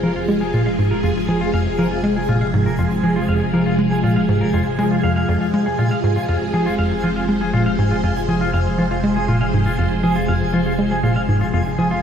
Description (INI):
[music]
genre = ambient, sequencer-driven space music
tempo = 120 BPM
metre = 4/4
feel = straight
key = F minor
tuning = A4 = 439 Hz
[part]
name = phased string machine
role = sustained chords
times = 0.0-12.0 s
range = C3 to C5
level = -20 LUFS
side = equal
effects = ensemble chorus, phaser
[part]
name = clean electric guitar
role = arpeggios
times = 0.0-12.0 s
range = F4 to F5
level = -26 LUFS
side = left 1 dB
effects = auto-pan, ping-pong delay
[part]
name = tight sequencer bass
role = riff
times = 0.0-11.9 s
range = F2 to Ab3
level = -19 LUFS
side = equal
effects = ping-pong delay
[part]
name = round analog bass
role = bass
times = 0.0-12.0 s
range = F1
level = -31 LUFS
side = equal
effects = none
[part]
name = twinkling granular texture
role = texture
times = 0.0-12.0 s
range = Ab5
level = -31 LUFS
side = right 4 dB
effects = built-in reverb
[sound]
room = wet plate reverb, RT60 3.5 s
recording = none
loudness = -16 LUFS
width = side -8 dB against mid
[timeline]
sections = 0.0-12.0 A section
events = none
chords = 0.0 Fm